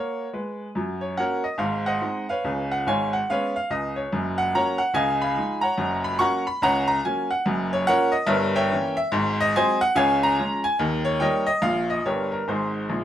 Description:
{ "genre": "jazz, stride piano", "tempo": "143 BPM", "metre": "4/4", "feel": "swing 64% on 8ths", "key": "F# major", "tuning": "A4 = 440 Hz", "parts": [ { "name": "bright upright piano", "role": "solo", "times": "0.0-13.0 s", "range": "F#1 to C#6", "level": "-21 LUFS", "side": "equal", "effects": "none" } ], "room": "moderate studio ambience, RT60 0.5 s", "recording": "none", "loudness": "-21 LUFS", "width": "side -11 dB against mid", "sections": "0.8-13.0 A section", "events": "upright piano fill 12.9", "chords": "0.0 F#; 1.6 G#7; 2.4 C#7; 4.1 F#; 4.9 C#9; 5.8 F#; 7.4 Gbmaj7; 8.3 Gdim7; 9.1 Ab7; 10.0 Db; 10.8 Eb7; 12.5 Ab" }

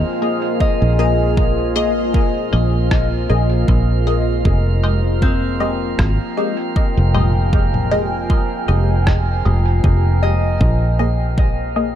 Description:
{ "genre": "ambient dub", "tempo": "78 BPM", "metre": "4/4", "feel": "swing 55% on 16ths", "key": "F minor", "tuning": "A4 = 440 Hz", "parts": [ { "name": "deep dark ambient pad", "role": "sustained chords", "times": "0.0-12.0 s", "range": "Bb3 to Ab5", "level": "-23 LUFS", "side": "equal", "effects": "chorus, built-in reverb" }, { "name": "Celtic harp", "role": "arpeggios", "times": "0.0-12.0 s", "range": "C4 to Eb5", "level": "-28 LUFS", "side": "left 1 dB", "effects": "dub echo" }, { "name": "fingered electric bass", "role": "bass", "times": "0.0-12.0 s", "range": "F1 to Bb1", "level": "-17 LUFS", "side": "equal", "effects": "none" }, { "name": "drifting glass-harmonics texture", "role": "texture", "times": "0.0-12.0 s", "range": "Bb3 to Bb4", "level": "-27 LUFS", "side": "right 2 dB", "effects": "chorus, built-in reverb" }, { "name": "filtered dub chord stab", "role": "stabs", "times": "0.2-12.0 s", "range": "Ab3 to Eb5", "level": "-24 LUFS", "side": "left 3 dB", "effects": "phaser, wide subtle chorus, dub echo" }, { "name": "electronic kick drum", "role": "drums", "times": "0.6-11.5 s", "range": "none", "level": "-17 LUFS", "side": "equal", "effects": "studio reverb" }, { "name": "electronic rim click and congas", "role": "drums", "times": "2.9-9.2 s", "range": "none", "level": "-26 LUFS", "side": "left 2 dB", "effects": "overdrive, studio reverb, dub echo" } ], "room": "light reverb, digital ambience", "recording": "none", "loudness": "-14 LUFS", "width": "side -10 dB against mid", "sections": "0.0-12.0 A section", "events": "filter sweep on harp 0.0-12.0", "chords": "0.0 Bb7sus4; 4.5 Fm9; 10.6 Bb7sus4" }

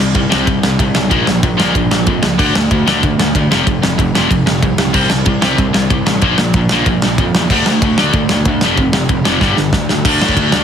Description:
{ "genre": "punk rock", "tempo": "188 BPM", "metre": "4/4", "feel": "straight", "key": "unclear", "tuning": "A4 = 444 Hz", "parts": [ { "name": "distorted electric guitar", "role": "riff", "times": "0.0-10.6 s", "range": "F2 to D4", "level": "-14 LUFS", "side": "equal", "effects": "distortion" }, { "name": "fuzz picked electric bass", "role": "bass", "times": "0.0-10.6 s", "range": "F1 to A2", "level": "-19 LUFS", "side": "equal", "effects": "overdrive" }, { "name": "big rock drum kit", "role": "drums", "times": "0.1-10.6 s", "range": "crash cymbal, kick drum, ride cymbal, snare drum", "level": "-15 LUFS", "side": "equal", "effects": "none" } ], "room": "light reverb", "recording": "heavily compressed radio sound", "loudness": "-11 LUFS", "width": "side -8 dB against mid", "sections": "0.0-10.1 A section", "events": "drum fill 9.4-10.1", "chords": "0.0 C5; 1.1 Bb5; 2.4 D5; 3.5 F5; 5.0 C5; 6.2 Bb5; 7.5 D5; 8.6 F5; 9.4 G5; 10.1 D5" }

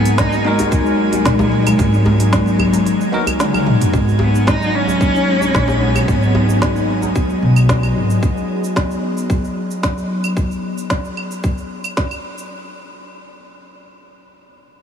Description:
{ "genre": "organic downtempo", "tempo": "112 BPM", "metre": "4/4", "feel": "straight", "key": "G# minor", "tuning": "A4 = 440 Hz", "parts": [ { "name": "rich cello", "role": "melody", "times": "0.0-6.9 s", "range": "G#3 to D#4", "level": "-21 LUFS", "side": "equal", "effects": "vintage 12-bit sampler grit, analog delay" }, { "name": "bell-like tine electric piano", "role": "accompaniment", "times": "0.0-3.2 s", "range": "B3 to A#4", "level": "-26 LUFS", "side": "left 1 dB", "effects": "medium stereo tremolo, sidechain pumping, analog delay" }, { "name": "bowed-like drone", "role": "sustained chords", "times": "0.0-10.4 s", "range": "F#3 to D#5", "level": "-21 LUFS", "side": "left 1 dB", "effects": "built-in reverb, phaser, sidechain pumping" }, { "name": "kalimba", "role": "arpeggios", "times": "0.0-6.1 s", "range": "D#3 to D#4", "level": "-23 LUFS", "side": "left 1 dB", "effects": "analog delay" }, { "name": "upright bass", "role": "bass", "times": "0.0-8.1 s", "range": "G#1 to B1", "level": "-18 LUFS", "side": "equal", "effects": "tube saturation, sidechain pumping" }, { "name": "drifting glass-harmonics texture", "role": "texture", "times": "0.0-8.2 s", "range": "G#5", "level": "-30 LUFS", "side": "right 3 dB", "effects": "chorus, built-in reverb" }, { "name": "organic electronic drum kit", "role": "drums", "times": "0.1-12.5 s", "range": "cabasa, claves, hi-hat, snare drum, toms", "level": "-23 LUFS", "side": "equal", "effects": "overdrive" }, { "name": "electronic kick drum", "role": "drums", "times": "0.2-12.1 s", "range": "none", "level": "-18 LUFS", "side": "equal", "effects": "overdrive" }, { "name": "djembe", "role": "percussion", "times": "0.6-8.1 s", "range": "none", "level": "-28 LUFS", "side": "left 2 dB", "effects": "none" } ], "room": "moderate huge ambient reverb, RT60 7.4 s", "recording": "dreamy mix soaked in reverb, small room ambience", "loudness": "-14 LUFS", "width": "side -8 dB against mid", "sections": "0.0-3.9 A section; 3.9-12.5 B section", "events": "drum fill 3.4-3.9; filter sweep on synth drone 3.9-10.4", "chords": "0.0 G#m7" }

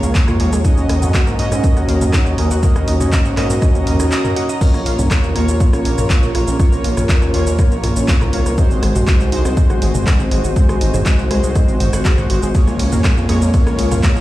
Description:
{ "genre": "melodic techno", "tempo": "121 BPM", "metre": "4/4", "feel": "straight", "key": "Bb minor", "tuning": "A4 = 440 Hz", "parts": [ { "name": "dark analog pad", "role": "sustained chords", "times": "0.0-14.2 s", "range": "F4 to Bb5", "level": "-27 LUFS", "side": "left 2 dB", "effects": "wide subtle chorus, sidechain pumping" }, { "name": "warbly dusty pluck", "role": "arpeggios", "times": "0.0-14.2 s", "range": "Ab3 to Eb6", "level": "-23 LUFS", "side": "equal", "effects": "chorus, sidechain pumping, dub echo" }, { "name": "analog synth brass", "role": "stabs", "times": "0.0-14.2 s", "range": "Ab3 to Eb5", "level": "-22 LUFS", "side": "equal", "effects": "chorus, cassette tape, sidechain pumping, dub echo" }, { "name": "gritty driven synth bass", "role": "bass", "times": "0.0-14.2 s", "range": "Ab1 to Ab2", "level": "-18 LUFS", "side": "equal", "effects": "sidechain pumping" }, { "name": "punchy analog drum machine", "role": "drums", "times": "0.0-14.2 s", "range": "crash cymbal, handclaps, hi-hat, ride cymbal, rim click, shaker, toms", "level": "-23 LUFS", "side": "right 1 dB", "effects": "none" }, { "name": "electronic kick drum", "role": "drums", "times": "0.1-14.1 s", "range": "none", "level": "-14 LUFS", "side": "equal", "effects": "none" }, { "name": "swell", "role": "sound effects", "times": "3.8-4.6 s", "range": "none", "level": "-31 LUFS", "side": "left 4 dB", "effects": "none" } ], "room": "little or no reverb", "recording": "played on a big sound system in a bare room, large studio reverb", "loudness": "-13 LUFS", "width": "side -16 dB against mid", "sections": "0.0-14.2 A section", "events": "swell 3.8-4.6; break 4.1-4.6", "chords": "0.0 Db6; 0.6 Ebm7; 4.6 Bbm; 8.6 Ab7; 12.5 Db6" }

